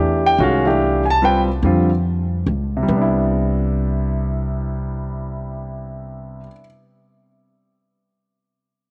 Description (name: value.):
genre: modal jazz.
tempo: 144 BPM.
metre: 3/4.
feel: swing 66% on 8ths.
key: C major.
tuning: A4 = 440 Hz.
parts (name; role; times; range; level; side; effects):
warm concert grand piano; accompaniment; 0.0-6.6 s; C3 to A5; -21 LUFS; equal; none.
upright bass; bass; 0.0-6.5 s; C2 to F2; -24 LUFS; equal; none.
room: light reverb, small room ambience.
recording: none.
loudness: -19 LUFS.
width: mono.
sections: 0.0-2.9 A section; 2.9-5.4 B section.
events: none.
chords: 0.0 Fmaj9; 2.9 Cmaj9.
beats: | 0.39 0.81 1.22 | 1.64 2.06 2.47 | 2.89 3.31 3.72 | 4.14 4.55 4.97.